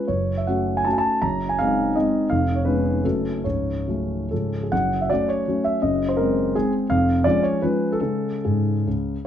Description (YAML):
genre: classical, romantic triple-time dance for piano with dotted rhythms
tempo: 131-178 BPM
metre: 3/4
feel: rubato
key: F# minor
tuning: A4 = 440 Hz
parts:
  - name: warm concert grand piano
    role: solo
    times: 0.0-9.3 s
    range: C#1 to A#5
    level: -20 LUFS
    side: equal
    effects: none
room: light reverb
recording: dark, warm production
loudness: -20 LUFS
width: side -10 dB against mid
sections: 0.0-4.7 A section; 4.7-9.3 A section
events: none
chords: 0.1 F#m; 1.2 G#7/F#; 2.3 C#7/E#; 3.0 F#m; 3.4 F#m/C#; 4.3 C#; 4.7 F#m; 5.8 G#7/F#; 6.9 C#/E#; 8.0 C#5